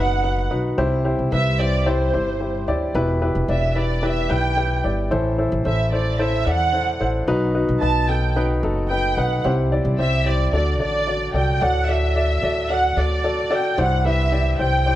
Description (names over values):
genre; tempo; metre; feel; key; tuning
piano-driven pop; 111 BPM; 4/4; straight; unclear; A4 = 440 Hz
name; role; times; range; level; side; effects
warm studio violin section; melody; 0.0-15.0 s; C5 to A5; -23 LUFS; right 2 dB; none
warm upright piano; accompaniment; 0.0-15.0 s; G2 to D5; -22 LUFS; left 1 dB; none
upright bass; bass; 0.0-15.0 s; E1 to E2; -22 LUFS; equal; none
room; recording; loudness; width
light reverb, small room ambience; dark, warm production; -18 LUFS; side -13 dB against mid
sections
0.0-11.6 A section; 11.6-15.0 B section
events
none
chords
0.0 B; 0.8 C; 2.9 Em; 5.1 Am; 7.3 B; 9.4 C; 10.5 D; 13.8 C